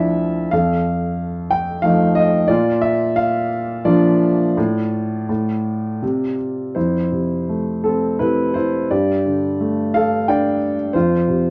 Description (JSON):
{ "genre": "classical, lyrical solo piano", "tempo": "79-94 BPM", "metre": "3/4", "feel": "rubato", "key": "D minor, F lydian from 6.8 s", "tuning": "A4 = 437 Hz", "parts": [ { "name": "warm grand piano", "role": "solo", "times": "0.0-11.5 s", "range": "D2 to G5", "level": "-18 LUFS", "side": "equal", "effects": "none" } ], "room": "light reverb", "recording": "worn, warbling old tape, cassette tape, warbly pitch drift", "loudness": "-19 LUFS", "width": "mono", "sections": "0.0-6.8 A section; 6.8-11.5 B section", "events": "none", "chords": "0.0 Dmadd9; 0.5 F7; 2.5 Bb; 4.6 Dm/A; 6.0 Csus24; 6.8 Fmaj7; 8.9 Gsus2; 11.0 F5", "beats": "| 0.52 1.18 1.83 | 2.49 3.17 3.85 | 4.57 5.29 6.02 | 6.76 7.49 8.20 | 8.91 9.61 10.28 | 10.95" }